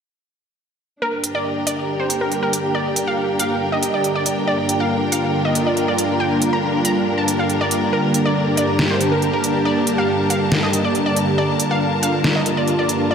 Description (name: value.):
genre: heavy wobble dubstep.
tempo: 139 BPM.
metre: 4/4.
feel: half-time.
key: G minor.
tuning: A4 = 440 Hz.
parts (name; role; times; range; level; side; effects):
wide unison pluck; melody; 1.0-13.1 s; Bb4 to Bb5; -24 LUFS; equal; vintage 12-bit sampler grit, ping-pong delay.
supersaw pad; sustained chords; 1.3-13.1 s; G2 to G4; -19 LUFS; right 1 dB; none.
warm studio string section; texture; 1.0-13.1 s; D4 to A5; -24 LUFS; left 1 dB; none.
dubstep drum kit; drums; 1.2-13.0 s; hi-hat, snare drum; -21 LUFS; right 1 dB; none.
room: wet lush hall reverb, RT60 2.0 s.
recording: dreamy mix soaked in reverb.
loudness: -16 LUFS.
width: side -7 dB against mid.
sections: 1.0-13.1 A section.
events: none.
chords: 1.0 Gm.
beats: | 1.02 1.45 1.88 2.31 | 2.75 3.18 3.61 4.04 | 4.47 4.91 5.34 5.77 | 6.20 6.63 7.06 7.50 | 7.93 8.36 8.79 9.22 | 9.65 10.09 10.52 10.95 | 11.38 11.81 12.24 12.68 | 13.11.